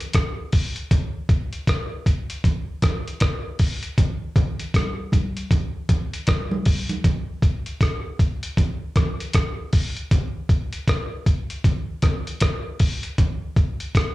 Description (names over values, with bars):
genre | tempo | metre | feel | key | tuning
reggae | 78 BPM | 4/4 | swing 62% on 16ths | none | none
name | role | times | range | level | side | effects
lo-fi sampler-style drum kit | drums | 0.0-14.1 s | hi-hat, kick drum, rim click | -20 LUFS | equal | none
congas | percussion | 0.9-13.4 s | none | -28 LUFS | right 2 dB | slapback echo
room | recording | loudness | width
little or no reverb | live gig heard through the venue's PA, club reverb | -20 LUFS | side -18 dB against mid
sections
0.0-14.1 A section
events
none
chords
none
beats
0.15 | 0.91 1.68 2.45 3.21 | 3.98 4.75 5.52 6.28 | 7.05 7.82 8.58 9.35 | 10.12 10.88 11.65 12.42 | 13.19 13.95